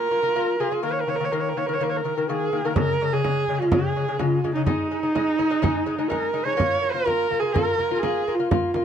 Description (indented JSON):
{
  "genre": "mongolian traditional, Mongolian folk",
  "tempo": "125 BPM",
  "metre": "4/4",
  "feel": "straight",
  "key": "unclear",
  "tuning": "A4 = 442 Hz",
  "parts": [
    { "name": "warm horsehead fiddle", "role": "melody", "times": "0.0-8.8 s", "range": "Eb4 to Db5", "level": "-23 LUFS", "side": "right 3 dB", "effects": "none" },
    { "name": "lute", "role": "arpeggios", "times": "0.0-8.8 s", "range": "Db3 to F4", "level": "-26 LUFS", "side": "left 6 dB", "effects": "none" },
    { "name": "frame drum", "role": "percussion", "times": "2.8-8.8 s", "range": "none", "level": "-26 LUFS", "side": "right 2 dB", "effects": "none" }
  ],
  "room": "light reverb",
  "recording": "dark, warm production",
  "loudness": "-21 LUFS",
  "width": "side -8 dB against mid",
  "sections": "0.0-2.8 A section; 2.8-8.8 B section",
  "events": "none",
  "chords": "0.0 Bb5; 0.8 Eb5; 2.8 Db5; 4.7 Ab5; 6.6 Bb5"
}